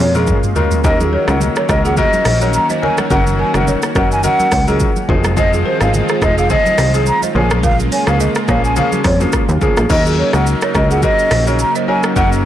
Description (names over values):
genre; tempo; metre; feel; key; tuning
afrobeats; 106 BPM; 4/4; swing 55% on 16ths; Eb dorian; A4 = 445 Hz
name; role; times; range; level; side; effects
mellow hollow concert flute; melody; 0.0-12.3 s; C5 to Bb5; -18 LUFS; right 1 dB; ping-pong delay
lush unison pad; sustained chords; 0.0-12.5 s; Db3 to Gb4; -22 LUFS; equal; chorus
plucky analog bass; bass; 0.0-12.5 s; F1 to F2; -16 LUFS; equal; none
bright concert grand piano; accompaniment; 0.1-12.5 s; F3 to Bb4; -20 LUFS; left 5 dB; none
afro-pop drum kit; drums; 0.1-12.4 s; crash cymbal, hi-hat, kick drum, rim click, shaker, toms; -19 LUFS; equal; none
balafon; riff; 0.2-12.3 s; F4 to Eb5; -23 LUFS; right 5 dB; ping-pong delay
congas; percussion; 0.2-9.9 s; none; -24 LUFS; right 1 dB; none
room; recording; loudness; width
light reverb, small room ambience; blown-out, overdriven recording, overdrive; -12 LUFS; side -12 dB against mid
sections
0.0-9.9 A section; 9.9-12.5 A section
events
drum fill 0.0-0.8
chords
0.0 Bbm7; 0.8 Ebm7; 3.1 Gb6; 5.1 Fm7; 7.4 Bbm7; 9.9 Ebm7